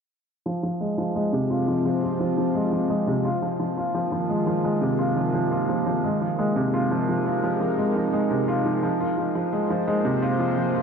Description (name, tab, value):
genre	drum and bass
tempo	172 BPM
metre	4/4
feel	swing 56% on 16ths, half-time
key	F minor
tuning	A4 = 440 Hz
part	bowed-like drone	sustained chords	1.2-10.8 s	Eb3 to C5	-26 LUFS	equal	built-in reverb, vintage 12-bit sampler grit
part	felt-muted upright piano	arpeggios	0.5-10.8 s	C3 to F4	-23 LUFS	equal	vintage 12-bit sampler grit, low-pass filter, dub echo
room	wet echo chamber reverb, RT60 2.5 s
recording	none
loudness	-22 LUFS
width	side -6 dB against mid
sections	0.5-10.8 A section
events	filter sweep on synth drone 0.5-10.8; filter sweep on felt piano 0.5-10.8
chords	0.5 Fm; 3.2 Ab; 8.8 Fm